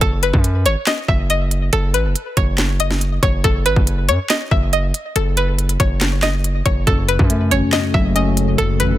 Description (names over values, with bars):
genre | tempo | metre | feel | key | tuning
hip hop, trap | 140 BPM | 4/4 | half-time | F# dorian | A4 = 440 Hz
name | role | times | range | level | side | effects
string-like resonator pluck | melody | 0.0-9.0 s | A4 to E5 | -21 LUFS | left 1 dB | chorus, low-pass filter, tape echo
distorted 808-style bass | bass | 0.0-9.0 s | F#1 to F#2 | -18 LUFS | equal | distortion
trap drum kit | drums | 0.0-8.9 s | handclaps, hi-hat, kick drum, snare drum | -18 LUFS | equal | none
mellow tine electric piano | accompaniment | 6.9-9.0 s | F#2 to C#4 | -19 LUFS | left 2 dB | overdrive, phaser, low-pass filter
dark analog pad | sustained chords | 7.2-9.0 s | C#3 to A4 | -24 LUFS | left 1 dB | chorus
room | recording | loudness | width
little or no reverb | dense, heavily limited modern master | -14 LUFS | side -14 dB against mid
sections
0.0-9.0 A section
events
none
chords
0.0 F#5; 6.9 F#m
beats
| 0.01 0.44 0.87 1.30 | 1.73 2.16 2.58 3.01 | 3.44 3.87 4.30 4.73 | 5.16 5.58 6.01 6.44 | 6.87 7.30 7.73 8.16 | 8.59